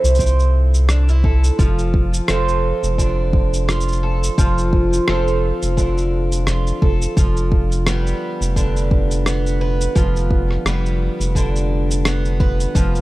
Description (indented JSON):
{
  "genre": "folktronica",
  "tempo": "86 BPM",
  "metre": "4/4",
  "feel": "swing 56% on 16ths",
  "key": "unclear",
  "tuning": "A4 = 439 Hz",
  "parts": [
    { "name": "picked twelve-string acoustic guitar", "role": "arpeggios", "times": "0.0-13.0 s", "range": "D3 to B4", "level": "-21 LUFS", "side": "right 2 dB", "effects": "low-pass filter, digital delay" },
    { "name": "round analog bass", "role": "bass", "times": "0.0-13.0 s", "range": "F1 to C2", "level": "-18 LUFS", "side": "equal", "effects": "none" },
    { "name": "electronic shaker and rim click", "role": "drums", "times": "0.0-13.0 s", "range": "none", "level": "-24 LUFS", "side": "equal", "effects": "studio reverb" },
    { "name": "electronic kick drum", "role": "drums", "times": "0.2-12.9 s", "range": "none", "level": "-17 LUFS", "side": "equal", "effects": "studio reverb" }
  ],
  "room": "little or no reverb",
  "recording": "dark, warm production",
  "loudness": "-15 LUFS",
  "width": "side -17 dB against mid",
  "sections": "0.0-13.0 A section",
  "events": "none",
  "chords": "0.0 Dm7/F; 7.2 G7/F"
}